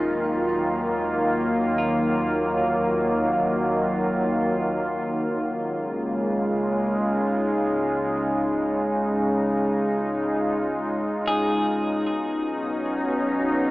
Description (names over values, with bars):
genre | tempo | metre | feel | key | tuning
ambient | 57 BPM | 3/4 | straight | unclear | A4 = 440 Hz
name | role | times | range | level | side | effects
evolving wavetable pad | sustained chords | 0.0-13.7 s | B2 to E#4 | -22 LUFS | equal | chorus, built-in reverb
clean electric guitar | arpeggios | 0.0-3.5, 11.3-12.3 s | A#3 to G#4 | -32 LUFS | equal | tape echo
warm sub bass | bass | 0.0-13.7 s | B1 to D#2 | -42 LUFS | equal | none
room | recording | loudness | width
wet huge ambient reverb, RT60 8.8 s | AM radio sound | -21 LUFS | side -19 dB against mid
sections
0.0-13.7 A section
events
fade-in on clean electric guitar 0.0-13.7; fade-out on sub bass 0.0-13.7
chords
0.0 D#m; 5.5 C#; 11.8 B